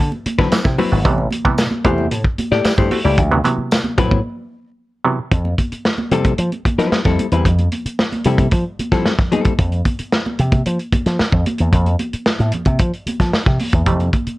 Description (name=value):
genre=funk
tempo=112 BPM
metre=4/4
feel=straight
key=unclear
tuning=A4 = 439 Hz
part: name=slap bass with an envelope filter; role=bass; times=0.0-14.3 s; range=G#1 to F3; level=-17 LUFS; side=equal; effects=none
part: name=congas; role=percussion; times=0.1-14.3 s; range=none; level=-25 LUFS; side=right 2 dB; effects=none
part: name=warm soul drum kit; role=drums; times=0.3-14.4 s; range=hi-hat, kick drum, snare drum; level=-18 LUFS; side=equal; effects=none
part: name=vintage hollow-body jazz guitar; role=accompaniment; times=0.4-9.5 s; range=F#3 to D5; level=-19 LUFS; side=left 4 dB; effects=none
part: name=muted clav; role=stabs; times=0.5-5.2, 13.9-14.1 s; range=C3 to G4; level=-20 LUFS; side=right 3 dB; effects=overdrive
part: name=tambourine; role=percussion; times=0.5-3.8 s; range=none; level=-35 LUFS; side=left 2 dB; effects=none
room=light reverb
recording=cassette tape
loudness=-15 LUFS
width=side -18 dB against mid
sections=0.0-5.3 A section; 5.3-14.4 B section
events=break 4.2-5.3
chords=0.0 D13; 1.0 Am7; 3.2 D13 (rootless); 5.3 Fmaj9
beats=0.52 | 1.05 1.58 2.12 2.65 | 3.18 3.71 4.25 4.78 | 5.32 5.85 6.38 6.92 | 7.45 7.99 8.52 9.05 | 9.59 10.12 10.66 11.19 | 11.73 12.26 12.79 13.33 | 13.86